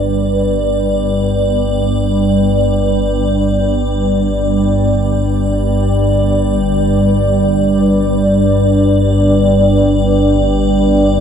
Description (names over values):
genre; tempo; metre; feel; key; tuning
dark ambient drone; free time; none; none; unclear; A4 = 440 Hz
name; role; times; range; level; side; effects
organ-like drone; drone; 0.0-11.2 s; G1 to G2; -12 LUFS; equal; ensemble chorus, built-in reverb
icy glass pad; texture; 0.0-11.2 s; D5; -22 LUFS; equal; chorus, built-in reverb
dark analog pad; sustained chords; 6.1-11.2 s; G3 to G5; -15 LUFS; right 2 dB; chorus
room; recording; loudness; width
wet spring reverb, RT60 2.7 s; none; -11 LUFS; side -8 dB against mid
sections
0.0-11.2 A section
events
fade-in on ambient pad 0.0-11.2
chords
0.0 G5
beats
free time